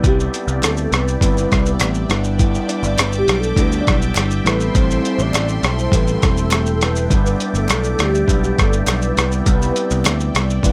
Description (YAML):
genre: indie pop, bedroom pop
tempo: 102 BPM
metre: 4/4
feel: straight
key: G major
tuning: A4 = 439 Hz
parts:
  - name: soft octave-layered synth lead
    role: melody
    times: 0.0-10.4 s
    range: G4 to D5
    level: -26 LUFS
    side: equal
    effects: phaser, ensemble chorus, analog delay
  - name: electric guitar through a small old amp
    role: accompaniment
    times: 0.0-10.7 s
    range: G2 to E4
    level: -30 LUFS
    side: equal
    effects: analog chorus, warbly pitch drift
  - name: mellow tine electric piano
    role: accompaniment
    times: 0.0-10.7 s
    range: G3 to B4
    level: -27 LUFS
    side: equal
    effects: cassette tape
  - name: phased analog pad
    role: sustained chords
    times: 0.0-10.7 s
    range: A4 to D6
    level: -30 LUFS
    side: equal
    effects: phaser, chorus
  - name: picked electric bass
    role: bass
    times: 0.0-10.7 s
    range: E1 to D2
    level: -22 LUFS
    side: equal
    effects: none
  - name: lo-fi sampler-style drum kit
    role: drums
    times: 0.0-10.7 s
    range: hi-hat, kick drum, rim click, shaker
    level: -20 LUFS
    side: equal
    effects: none
  - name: group handclap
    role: percussion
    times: 0.6-10.2 s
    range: none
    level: -33 LUFS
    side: equal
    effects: none
room: light reverb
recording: none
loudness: -17 LUFS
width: mono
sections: 0.0-10.7 A section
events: soft synth lead solo 0.0-10.7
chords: 0.0 Cmaj7; 2.1 G6; 4.5 Am7; 7.1 G6; 9.2 Cmaj7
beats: | 0.04 0.63 1.22 1.81 | 2.40 2.98 3.57 4.16 | 4.75 5.34 5.93 6.52 | 7.11 7.70 8.28 8.87 | 9.46 10.05 10.64